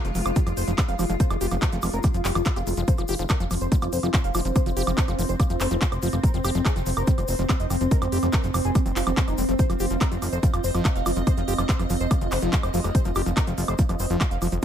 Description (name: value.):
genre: psychedelic trance.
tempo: 143 BPM.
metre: 4/4.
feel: straight.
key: F minor.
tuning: A4 = 440 Hz.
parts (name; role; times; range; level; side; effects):
wide unison lead; melody; 0.0-14.6 s; C4 to F5; -30 LUFS; left 2 dB; phaser, sidechain pumping, tape echo.
evolving wavetable pad; sustained chords; 0.0-14.6 s; Ab3 to Eb5; -31 LUFS; right 1 dB; chorus, built-in reverb, sidechain pumping.
overdriven acid bass; riff; 0.0-14.5 s; Eb3 to G4; -33 LUFS; moving between left 5 dB and right 5 dB; distortion, auto-pan, sidechain pumping, tape echo.
fat analog bass; bass; 0.0-14.6 s; F1; -27 LUFS; equal; none.
techno drum kit; drums; 0.0-14.6 s; handclaps, hi-hat, woodblock; -30 LUFS; right 2 dB; none.
egg shaker; percussion; 0.1-14.6 s; none; -41 LUFS; left 4 dB; none.
electronic kick drum; drums; 0.4-14.6 s; none; -22 LUFS; equal; none.
vowel-sweep wobble bass; second line; 4.9-5.8, 11.6-13.1 s; Ab3 to C4; -44 LUFS; right 3 dB; none.
room: digital ambience.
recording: none.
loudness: -21 LUFS.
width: side -9 dB against mid.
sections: 0.0-14.6 A section.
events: none.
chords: 0.0 F5.